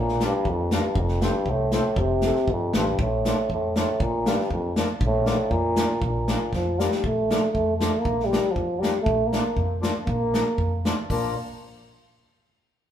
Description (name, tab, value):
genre	alpine folk, alpine dance band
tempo	119 BPM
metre	2/4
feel	straight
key	Bb major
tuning	A4 = 439 Hz
part	warm euphonium	melody	0.0-11.4 s	F2 to Bb3	-24 LUFS	equal	none
part	upright bass	bass	0.0-11.3 s	F1 to F2	-29 LUFS	equal	none
part	natural country drum kit	drums	0.1-11.2 s	hi-hat, kick drum, snare drum	-27 LUFS	equal	none
part	mellow accordion	accompaniment	0.2-11.4 s	F3 to D4	-32 LUFS	left 4 dB	none
room	moderate large studio reverb, RT60 1.4 s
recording	band playing live in one room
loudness	-21 LUFS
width	side -10 dB against mid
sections	0.0-7.0 A section; 7.0-11.1 B section; 11.1-12.1 C section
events	drum fill 6.5-7.0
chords	0.0 Bb; 1.0 F; 3.0 Bb